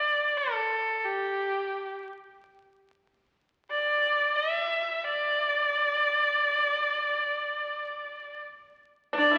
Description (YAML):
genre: chinese traditional, Chinese chamber ensemble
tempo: free time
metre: none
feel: none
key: unclear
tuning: A4 = 443 Hz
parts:
  - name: clear erhu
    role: melody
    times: 0.0-9.4 s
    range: G4 to E5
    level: -28 LUFS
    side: equal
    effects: none
  - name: pipa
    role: second line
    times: 9.1-9.4 s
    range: D4 to E4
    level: -32 LUFS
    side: equal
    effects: none
  - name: rich horsehead fiddle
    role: second line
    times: 9.2-9.4 s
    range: D4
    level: -31 LUFS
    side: equal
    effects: none
room: wet recital hall reverb, RT60 1.8 s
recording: very old 78 rpm record, vinyl crackle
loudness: -28 LUFS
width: mono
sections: 0.0-9.1 A section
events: none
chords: none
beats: free time